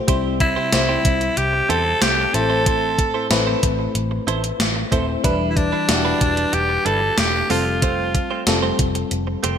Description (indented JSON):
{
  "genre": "1980s-style pop",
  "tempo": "93 BPM",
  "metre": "4/4",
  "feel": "straight",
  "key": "unclear",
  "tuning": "A4 = 440 Hz",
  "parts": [
    { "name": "FM electric piano", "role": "accompaniment", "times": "0.0-9.6 s", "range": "A2 to C5", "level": "-24 LUFS", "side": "left 3 dB", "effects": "chorus" },
    { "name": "direct-recorded clean electric guitar", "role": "riff", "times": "0.1-9.6 s", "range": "G3 to C5", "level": "-27 LUFS", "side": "right 7 dB", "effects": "wide subtle chorus, digital delay" },
    { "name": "vintage muted picked electric bass", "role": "bass", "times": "0.1-9.6 s", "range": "Eb1 to E2", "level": "-25 LUFS", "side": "equal", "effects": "none" },
    { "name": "gated 80s digital drum machine", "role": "drums", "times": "0.1-9.6 s", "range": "hi-hat, kick drum, snare drum", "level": "-21 LUFS", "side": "equal", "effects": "gated reverb, gated reverb snare, overdrive" },
    { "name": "breathy alto saxophone", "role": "melody", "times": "0.4-8.5 s", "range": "D4 to A4", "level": "-20 LUFS", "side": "equal", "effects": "digital delay" }
  ],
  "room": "moderate plate reverb, RT60 2.2 s",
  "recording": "bright 1980s-style digital production",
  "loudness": "-17 LUFS",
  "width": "side -8 dB against mid",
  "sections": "0.0-9.6 A section",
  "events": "none",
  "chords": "0.1 C; 2.3 Am; 5.2 Em7; 7.5 Fadd9",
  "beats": "| 0.08 0.73 1.37 2.02 | 2.66 3.31 3.95 4.60 | 5.24 5.89 6.53 7.18 | 7.82 8.47 9.12"
}